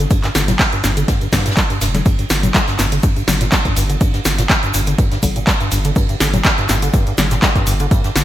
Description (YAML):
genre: acid house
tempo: 123 BPM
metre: 4/4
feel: swing 54% on 16ths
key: G minor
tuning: A4 = 438 Hz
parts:
  - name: acid bass, square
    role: riff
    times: 0.0-8.2 s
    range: G2 to G3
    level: -20 LUFS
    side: equal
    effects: ensemble chorus, sidechain pumping, digital delay
  - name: saturated sub bass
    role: bass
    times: 0.0-8.2 s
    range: F1 to G2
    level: -20 LUFS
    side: equal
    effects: sidechain pumping
  - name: tube shaker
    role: percussion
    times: 0.0-8.2 s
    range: none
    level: -29 LUFS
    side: left 4 dB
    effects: none
  - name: electro analog drum machine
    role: drums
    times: 0.1-8.2 s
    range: congas, handclaps, hi-hat, snare drum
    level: -18 LUFS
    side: equal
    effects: small room ambience, gated reverb
  - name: electronic kick drum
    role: drums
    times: 0.1-8.0 s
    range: none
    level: -16 LUFS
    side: equal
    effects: overdrive, small room ambience
  - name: jazz brush drum kit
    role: drums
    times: 0.1-8.2 s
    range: hi-hat, ride cymbal, snare drum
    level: -28 LUFS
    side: right 2 dB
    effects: high-pass filter on cymbals, small room ambience, high-pass filter on hats, high-pass filter on snare, high-pass filter on room, gated reverb
room: light reverb, small room ambience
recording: bright 1980s-style digital production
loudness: -13 LUFS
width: side -13 dB against mid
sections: 0.0-8.2 A section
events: filter sweep on acid bass 0.0-8.2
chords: 0.0 G5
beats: | 0.11 0.59 1.08 1.57 | 2.06 2.55 3.03 3.52 | 4.01 4.50 4.99 5.47 | 5.96 6.45 6.94 7.42 | 7.91